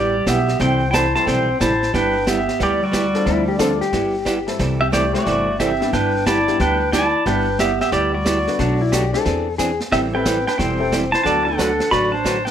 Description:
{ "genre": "country, western swing", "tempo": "180 BPM", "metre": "4/4", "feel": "swing 65% on 8ths", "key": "G major", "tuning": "A4 = 439 Hz", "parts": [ { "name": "pedal steel guitar", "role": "melody", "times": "0.0-12.5 s", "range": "F#4 to B5", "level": "-20 LUFS", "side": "right 1 dB", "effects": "none" }, { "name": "growling clarinet", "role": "second line", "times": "0.0-12.5 s", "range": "G3 to F#4", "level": "-24 LUFS", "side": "equal", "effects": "none" }, { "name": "archtop guitar, miked and amplified", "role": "accompaniment", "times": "0.0-12.4 s", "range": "B2 to B4", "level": "-24 LUFS", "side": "right 3 dB", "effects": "none" }, { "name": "upright bass", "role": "bass", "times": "0.0-12.4 s", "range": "E1 to E2", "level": "-24 LUFS", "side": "left 1 dB", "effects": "none" }, { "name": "vintage brush drum kit", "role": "drums", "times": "0.3-12.5 s", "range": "brushed snare drum, hi-hat, kick drum, snare drum", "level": "-27 LUFS", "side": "equal", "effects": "none" }, { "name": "clear upright piano", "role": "accompaniment", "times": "1.1-11.8 s", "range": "G3 to B4", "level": "-26 LUFS", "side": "left 4 dB", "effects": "none" }, { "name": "clean lap steel guitar", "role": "second line", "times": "3.3-4.5, 8.6-9.8 s", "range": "D4 to A4", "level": "-22 LUFS", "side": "left 6 dB", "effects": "none" } ], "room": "moderate studio reverb, RT60 0.7 s", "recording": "none", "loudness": "-16 LUFS", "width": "side -9 dB against mid", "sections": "0.0-12.5 A section", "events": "none", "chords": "0.0 G6; 0.6 C6; 1.9 G6; 3.3 Dm7; 3.9 G6; 4.6 C6; 5.9 G6; 8.6 Bm7; 9.3 Eaug7; 9.9 Am7; 11.2 D6" }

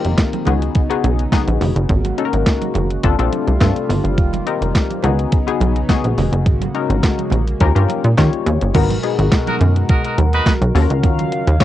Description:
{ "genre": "early-eighties boogie funk", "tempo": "105 BPM", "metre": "4/4", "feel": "straight", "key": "unclear", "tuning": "A4 = 439 Hz", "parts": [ { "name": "funky polysynth comp", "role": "accompaniment", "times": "0.0-11.6 s", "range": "Cb4 to Db5", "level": "-21 LUFS", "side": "left 10 dB", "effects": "chorus, cassette tape" }, { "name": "chorused pulse-width pad", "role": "sustained chords", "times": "0.0-11.6 s", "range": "Cb3 to F5", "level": "-24 LUFS", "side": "equal", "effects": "cassette tape" }, { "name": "crisp 8-bit digital drum machine", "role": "drums", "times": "0.0-11.6 s", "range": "crash cymbal, handclaps, hi-hat, kick drum, snare drum", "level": "-17 LUFS", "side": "right 1 dB", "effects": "overdrive, cassette tape" }, { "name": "plucky analog bass", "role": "bass", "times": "0.1-11.6 s", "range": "F1 to Eb3", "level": "-16 LUFS", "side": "right 1 dB", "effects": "none" }, { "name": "congas", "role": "percussion", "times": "0.1-11.6 s", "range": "none", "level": "-28 LUFS", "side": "right 12 dB", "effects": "none" }, { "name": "bright horn section", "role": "second line", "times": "9.5-10.5 s", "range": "Eb4 to Cb5", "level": "-20 LUFS", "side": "right 1 dB", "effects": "cassette tape" } ], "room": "little or no reverb", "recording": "home recording on cassette, nothing above 10.8 kHz", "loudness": "-14 LUFS", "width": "side -13 dB against mid", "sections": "0.0-8.7 A section; 8.7-11.6 B section", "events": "none", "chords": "0.5 Db9sus4; 1.9 Ab9sus4; 3.0 G9sus4; 4.2 F9sus4; 5.0 Db9sus4; 6.5 Ab9sus4; 7.6 Eb7; 8.7 Abm9; 10.7 Ebm9" }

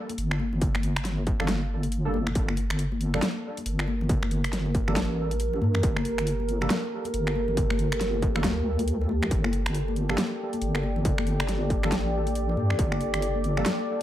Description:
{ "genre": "deep dubstep", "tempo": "138 BPM", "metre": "4/4", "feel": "swing 61% on 16ths, half-time", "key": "G minor", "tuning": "A4 = 441 Hz", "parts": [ { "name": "dubstep drum kit", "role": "drums", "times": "0.1-13.8 s", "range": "finger snaps, hi-hat, snare drum", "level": "-31 LUFS", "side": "equal", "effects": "none" }, { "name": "congas and bongos", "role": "percussion", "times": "0.1-13.8 s", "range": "none", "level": "-33 LUFS", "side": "left 3 dB", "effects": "dub echo" }, { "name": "deep soft wobble bass", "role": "bass", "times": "0.2-13.6 s", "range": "G1 to G2", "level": "-28 LUFS", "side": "equal", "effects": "chorus" }, { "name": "electronic kick drum", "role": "drums", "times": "0.6-12.9 s", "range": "none", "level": "-28 LUFS", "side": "equal", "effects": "distortion" }, { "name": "barky tine electric piano", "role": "stabs", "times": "1.4-13.7 s", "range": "G3 to A4", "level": "-35 LUFS", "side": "right 1 dB", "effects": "overdrive, ensemble chorus, dub echo" }, { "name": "deep dark ambient pad", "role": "sustained chords", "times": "3.9-14.0 s", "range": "G4 to D5", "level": "-31 LUFS", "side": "right 1 dB", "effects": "chorus, built-in reverb" } ], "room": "light reverb", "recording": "none", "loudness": "-24 LUFS", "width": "side -12 dB against mid", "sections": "0.0-14.0 A section", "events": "kick drops out 1.9-2.4", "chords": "0.0 Gmadd9" }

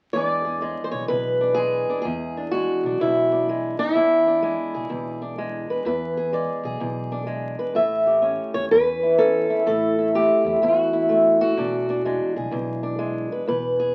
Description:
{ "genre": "acoustic country blues, solo or duo", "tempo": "126 BPM", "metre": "4/4", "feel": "swing 65% on 8ths", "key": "E mixolydian", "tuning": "A4 = 440 Hz", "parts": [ { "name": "fingerpicked swing-style acoustic guitar", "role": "melody", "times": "0.1-13.9 s", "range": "E2 to E5", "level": "-22 LUFS", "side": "equal", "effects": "none" }, { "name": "upright bass", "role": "bass", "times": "0.1-13.9 s", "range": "E1 to E2", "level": "-39 LUFS", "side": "equal", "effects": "none" } ], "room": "wet club reverb, RT60 0.5 s", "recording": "very old 78 rpm record, vinyl crackle", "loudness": "-22 LUFS", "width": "mono", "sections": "0.1-13.9 A section", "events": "none", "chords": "0.1 E7; 7.8 A7; 11.6 E7" }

